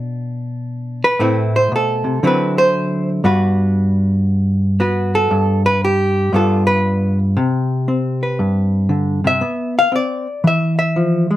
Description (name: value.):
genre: solo jazz.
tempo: 117 BPM.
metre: 4/4.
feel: swing 66% on 8ths.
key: G major, C major from 7.4 s.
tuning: A4 = 437 Hz.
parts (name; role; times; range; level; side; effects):
hollow-body jazz guitar; solo; 0.0-11.4 s; G2 to F5; -14 LUFS; equal; none.
room: light reverb.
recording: minimal, uncompressed stereo recording.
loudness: -14 LUFS.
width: side -14 dB against mid.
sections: 0.0-7.4 A section; 7.4-11.4 A section.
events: hollow-body jazz guitar solo 0.0-11.4.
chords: 0.0 Bm; 1.2 Am; 2.2 D9; 3.2 Gmaj7; 6.3 G7; 7.4 C5; 9.4 Bdim; 10.4 N.C..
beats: 0.16 0.68 | 1.19 1.71 2.22 2.73 | 3.25 3.76 4.28 4.79 | 5.30 5.82 6.33 6.84 | 7.36 7.87 8.38 8.90 | 9.41 9.93 10.44 10.96.